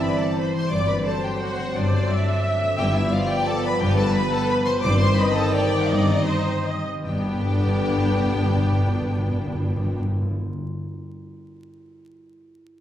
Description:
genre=classical, orchestral ballroom waltz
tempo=152-188 BPM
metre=3/4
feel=rubato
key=G major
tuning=A4 = 441 Hz
part: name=warm symphonic violin section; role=melody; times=0.0-10.0 s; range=D5 to D6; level=-30 LUFS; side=left 2 dB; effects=none
part: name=warm symphonic violin section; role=second line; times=0.0-10.0 s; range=D4 to D5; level=-31 LUFS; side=left 2 dB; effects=none
part: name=rich symphonic viola section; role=accompaniment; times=0.0-10.0 s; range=B3 to E5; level=-27 LUFS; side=right 1 dB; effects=none
part: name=dark French horn section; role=sustained chords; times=0.0-10.0 s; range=D3 to C4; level=-27 LUFS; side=left 1 dB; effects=none
part: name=concert harp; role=arpeggios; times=0.0-10.9 s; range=G2 to G5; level=-31 LUFS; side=left 2 dB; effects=none
part: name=dark symphonic double bass section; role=bass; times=0.7-10.0 s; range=G1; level=-27 LUFS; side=equal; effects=none
part: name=rich symphonic cello section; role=bass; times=0.7-10.0 s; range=G2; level=-28 LUFS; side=equal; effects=none
part: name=timpani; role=percussion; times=0.7-10.4 s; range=G2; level=-28 LUFS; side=equal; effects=none
room=wet recital hall reverb, RT60 1.4 s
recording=heard from further back in the room, vinyl crackle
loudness=-20 LUFS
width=side -11 dB against mid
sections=0.0-7.0 A section; 7.0-9.2 B section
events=slowing down 4.3-7.0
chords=0.0 C/G; 0.7 D7/G; 2.8 G7; 4.8 Cm/G; 7.0 G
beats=0.02 0.38 | 0.72 1.06 1.41 | 1.75 2.09 2.45 | 2.78 3.12 3.48 | 3.81 4.15 4.50 | 4.84 5.18 5.55 | 5.90 6.27 6.66 | 7.04 7.40 7.77 | 8.13 8.50 8.88

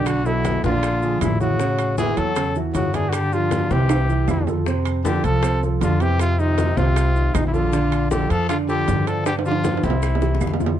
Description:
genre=Afro-Cuban jazz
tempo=156 BPM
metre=4/4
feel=straight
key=F major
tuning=A4 = 438 Hz
part: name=warm trumpet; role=melody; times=0.0-10.6 s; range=Eb4 to A4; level=-24 LUFS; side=left 1 dB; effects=none
part: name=growling tenor saxophone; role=second line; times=0.0-10.6 s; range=Bb2 to F#3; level=-27 LUFS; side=left 5 dB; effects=none
part: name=warm concert grand piano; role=accompaniment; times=0.0-10.8 s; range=C3 to D5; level=-25 LUFS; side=right 4 dB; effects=none
part: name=upright bass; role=bass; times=0.0-10.8 s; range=A1 to G2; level=-22 LUFS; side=equal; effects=none
part: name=bongos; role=percussion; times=0.1-10.7 s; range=none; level=-33 LUFS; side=left 7 dB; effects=none
part: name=claves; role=percussion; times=0.1-10.6 s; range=none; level=-38 LUFS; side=right 8 dB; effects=none
part: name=congas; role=percussion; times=0.1-10.8 s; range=none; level=-28 LUFS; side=left 2 dB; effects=none
part: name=maracas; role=percussion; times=0.1-10.8 s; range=none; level=-42 LUFS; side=right 8 dB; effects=none
part: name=timbales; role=percussion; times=0.1-10.8 s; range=none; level=-28 LUFS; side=right 6 dB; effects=none
room=light reverb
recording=dark, warm production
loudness=-18 LUFS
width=side -10 dB against mid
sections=0.0-10.8 A section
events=drum fill 3.9-4.7, 9.3-10.8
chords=0.1 Bm7; 0.8 Bb7#11; 1.6 A6; 3.1 G5; 3.9 C6; 4.7 F; 6.2 F7(no3); 7.7 Bbmaj7; 9.3 G7sus4; 10.0 C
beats=| 0.07 0.45 0.83 1.21 | 1.60 1.98 2.36 2.75 | 3.13 3.51 3.90 4.28 | 4.66 5.05 5.43 5.81 | 6.20 6.58 6.96 7.35 | 7.73 8.11 8.50 8.88 | 9.26 9.65 10.03 10.41

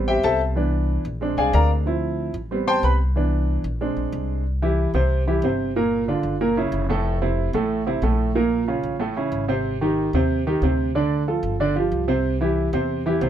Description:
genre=Afro-Cuban jazz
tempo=185 BPM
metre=4/4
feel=straight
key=C major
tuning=A4 = 441 Hz
part: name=warm concert grand piano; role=accompaniment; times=0.0-13.3 s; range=A2 to C6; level=-21 LUFS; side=right 1 dB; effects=none
part: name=upright bass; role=bass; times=0.0-13.3 s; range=F1 to E2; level=-24 LUFS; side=equal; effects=none
room=light reverb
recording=minimal, uncompressed stereo recording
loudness=-20 LUFS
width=side -10 dB against mid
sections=0.0-4.5 A section; 4.5-13.3 B section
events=grand piano solo 0.0-4.5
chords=0.0 Am7; 0.6 Cmaj7; 1.2 Bb7; 1.9 Dm7; 2.5 Am7; 3.2 Cmaj7; 3.8 Bb7; 4.5 C; 5.8 Gm7; 6.4 F#7; 7.1 Fmaj7; 8.3 Bbm; 9.0 A; 9.6 Abmaj7; 10.9 Dm; 11.6 G5; 12.2 C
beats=0.24 | 0.57 0.89 1.22 1.54 | 1.86 2.19 2.51 2.83 | 3.16 3.48 3.81 4.13 | 4.46 4.78 5.10 5.43 | 5.75 6.08 6.40 6.73 | 7.05 7.38 7.70 8.03 | 8.35 8.68 9.00 9.32 | 9.65 9.97 10.30 10.62 | 10.95 11.27 11.60 11.92 | 12.25 12.57 12.89 13.22

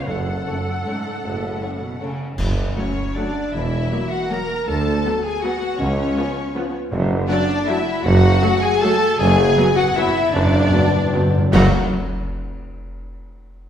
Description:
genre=classical, orchestral ballroom waltz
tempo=144-174 BPM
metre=3/4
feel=rubato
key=F# minor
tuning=A4 = 440 Hz
part: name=warm symphonic violin section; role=melody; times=0.0-11.7 s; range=C#5 to A#5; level=-26 LUFS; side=left 3 dB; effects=none
part: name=silver concert flute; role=second line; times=0.0-2.2 s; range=F#5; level=-34 LUFS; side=left 1 dB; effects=none
part: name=clear symphonic viola section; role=accompaniment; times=0.0-11.7 s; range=E#3 to A4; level=-28 LUFS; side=equal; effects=none
part: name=bright symphonic double bass section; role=bass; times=0.1-11.7 s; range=E1 to D2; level=-23 LUFS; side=right 2 dB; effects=none
part: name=clear tuba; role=bass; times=0.1-11.7 s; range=E1 to D2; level=-26 LUFS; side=right 2 dB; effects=none
part: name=rich symphonic cello section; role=bass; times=0.1-11.7 s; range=C#2 to C#3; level=-24 LUFS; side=right 1 dB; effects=none
part: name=cymbal swell, clash cymbals and concert bass drum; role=percussion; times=0.1-3.1, 11.5-12.2 s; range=none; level=-28 LUFS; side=equal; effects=none
part: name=timpani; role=percussion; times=0.1-0.6, 6.9-11.7 s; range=F#2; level=-24 LUFS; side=left 1 dB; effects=none
part: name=warm symphonic violin section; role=second line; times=0.5-11.7 s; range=C#4 to C#5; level=-24 LUFS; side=left 3 dB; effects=none
part: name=warm French horn section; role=sustained chords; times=0.5-11.7 s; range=A3 to F#4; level=-28 LUFS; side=left 2 dB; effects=none
part: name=warm clarinet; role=second line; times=2.8-11.7 s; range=C#4 to A#4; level=-24 LUFS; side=equal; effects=none
room=wet recital hall reverb, RT60 1.4 s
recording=none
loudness=-17 LUFS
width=side -9 dB against mid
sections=0.0-2.4 A section; 2.4-11.5 B section; 11.5-12.6 C section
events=band accent 2.4-2.8, 11.5-11.9; timpani fill 9.2-11.5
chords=0.1 F#m; 3.5 F#7/E; 4.7 Bm/D; 5.8 C#7; 6.9 F#m; 9.2 Bm/F#; 11.5 F#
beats=| 0.08 0.46 0.86 | 1.24 1.61 2.01 | 2.38 2.76 3.16 | 3.53 3.91 4.30 | 4.67 5.05 5.44 | 5.80 6.17 6.55 | 6.92 7.29 7.68 | 8.05 8.43 8.82 | 9.19 9.57 9.96 | 10.34 10.73 11.14 | 11.53 11.90

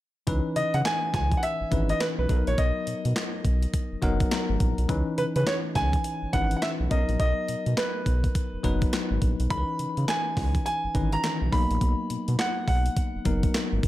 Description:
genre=R&B, new jack swing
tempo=104 BPM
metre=4/4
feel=swing 62% on 16ths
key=C# dorian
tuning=A4 = 438 Hz
part: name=bell-like tine electric piano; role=accompaniment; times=0.3-13.9 s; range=D#3 to A#5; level=-31 LUFS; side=left 3 dB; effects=fast stereo tremolo
part: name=round analog bass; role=bass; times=0.3-13.9 s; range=F#1 to C#3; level=-26 LUFS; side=equal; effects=none
part: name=clean 12-bit digital drum machine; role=drums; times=0.3-13.9 s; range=handclaps, hi-hat, kick drum, snare drum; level=-28 LUFS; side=equal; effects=overdrive
part: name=clear grand piano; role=melody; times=0.6-13.5 s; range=B4 to B5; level=-29 LUFS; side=right 1 dB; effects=ping-pong delay
room=little or no reverb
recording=none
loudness=-23 LUFS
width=side -15 dB against mid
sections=0.3-13.9 A section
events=tine electric piano fill 3.7-4.9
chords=0.3 C#m9; 2.3 Bmaj7; 4.9 C#m9; 6.9 Bmaj7; 9.5 C#m9; 11.5 Bmaj7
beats=| 0.27 0.85 1.43 2.00 | 2.58 3.16 3.73 4.31 | 4.89 5.47 6.04 6.62 | 7.20 7.77 8.35 8.93 | 9.50 10.08 10.66 11.23 | 11.81 12.39 12.97 13.54

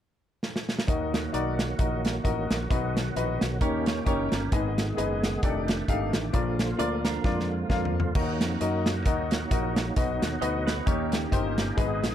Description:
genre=uptempo gospel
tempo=132 BPM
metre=4/4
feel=swing 56% on 8ths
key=Eb harmonic minor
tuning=A4 = 442 Hz
part: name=modern studio drum kit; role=drums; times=0.4-12.1 s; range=crash cymbal, hi-hat, kick drum, snare drum, toms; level=-28 LUFS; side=equal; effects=none
part: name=clear grand piano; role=accompaniment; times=0.9-12.1 s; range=Ab2 to F5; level=-30 LUFS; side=left 4 dB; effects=none
part: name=bright tonewheel organ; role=sustained chords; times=0.9-12.1 s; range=D3 to Ab4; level=-33 LUFS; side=right 3 dB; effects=fast rotary speaker, chorus vibrato
part: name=fingered electric bass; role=bass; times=0.9-12.1 s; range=F1 to Gb2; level=-32 LUFS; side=equal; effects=none
part: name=clean electric guitar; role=second line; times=3.6-11.5 s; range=Ab3 to D#5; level=-34 LUFS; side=right 8 dB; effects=none
room=little or no reverb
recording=dark, warm production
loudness=-24 LUFS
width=side -10 dB against mid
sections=0.9-8.2 A section; 8.2-12.1 B section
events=drum fill 0.4-0.9, 7.2-8.2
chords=0.0 N.C.; 0.9 Ebm; 2.7 B; 3.6 Eb7; 4.5 Abm; 5.4 F13; 6.3 Bb; 8.2 Ebm; 10.0 B; 10.9 Eb7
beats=0.43 | 0.88 1.34 1.79 2.25 | 2.70 3.16 3.61 4.07 | 4.52 4.98 5.43 5.88 | 6.34 6.79 7.25 7.70 | 8.15 8.61 9.06 9.51 | 9.97 10.42 10.87 11.32 | 11.78

